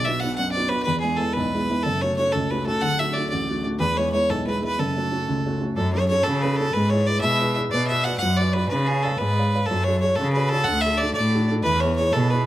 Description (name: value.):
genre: celtic folk, Celtic jig.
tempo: 122 BPM (dotted quarters).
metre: 6/8.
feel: straight.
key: F# minor.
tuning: A4 = 439 Hz.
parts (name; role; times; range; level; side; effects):
clear fiddle; melody; 0.0-12.5 s; G#4 to F#5; -23 LUFS; equal; none.
dark upright piano; accompaniment; 0.0-12.5 s; D1 to E#5; -25 LUFS; right 1 dB; none.
rich cello; bass; 5.8-12.5 s; D2 to C#3; -23 LUFS; equal; none.
room: moderate recital hall reverb, RT60 1.3 s.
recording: close, detailed microphones.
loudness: -20 LUFS.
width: side -14 dB against mid.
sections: 0.0-5.8 A section; 5.8-12.5 A section.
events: none.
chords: 0.0 Bm; 0.9 E; 1.8 F#m; 2.8 D; 3.8 E; 4.8 F#m; 6.7 E/G#; 7.7 Bm; 8.7 C#7; 9.7 F#m; 10.7 D; 11.7 E.